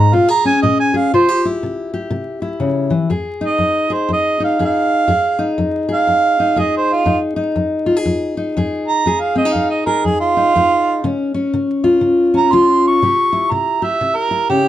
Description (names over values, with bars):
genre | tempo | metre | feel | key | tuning
acoustic country blues, solo or duo | 121 BPM | 4/4 | swing 61% on 8ths | F minor | A4 = 440 Hz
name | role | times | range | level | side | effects
mellow harmonica | melody | 0.0-14.7 s | F4 to Db6 | -15 LUFS | right 3 dB | none
fingerpicked steel-string acoustic guitar | accompaniment | 0.0-14.7 s | F2 to Ab4 | -16 LUFS | left 2 dB | none
room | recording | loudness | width
moderate small room reverb, RT60 0.6 s | dark, warm production, vinyl crackle | -14 LUFS | side -12 dB against mid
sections
0.0-3.1 A section; 3.1-14.7 B section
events
harmonica solo 3.1-14.7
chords
0.1 Bbm7; 1.1 C; 3.1 Fm7; 11.0 Db; 13.0 C